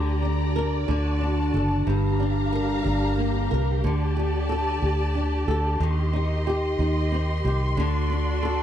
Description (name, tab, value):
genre	pop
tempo	61 BPM (dotted quarters)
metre	6/8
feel	straight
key	G minor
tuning	A4 = 440 Hz
part	flamenco guitar	accompaniment	0.0-8.6 s	G2 to Bb4	-26 LUFS	equal	double-tracked left and right
part	warm symphonic string section	sustained chords	0.0-8.6 s	F#4 to C6	-30 LUFS	left 1 dB	none
part	vintage muted fingered electric bass	bass	0.0-8.6 s	F#1 to Eb2	-24 LUFS	equal	none
room	little or no reverb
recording	dry, close 1970s-style studio recording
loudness	-22 LUFS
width	side -10 dB against mid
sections	0.0-8.6 A section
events	none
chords	0.0 Gm/D; 0.9 D; 1.9 Gm7; 3.8 Dsus4; 5.8 Cm/Eb; 7.8 D7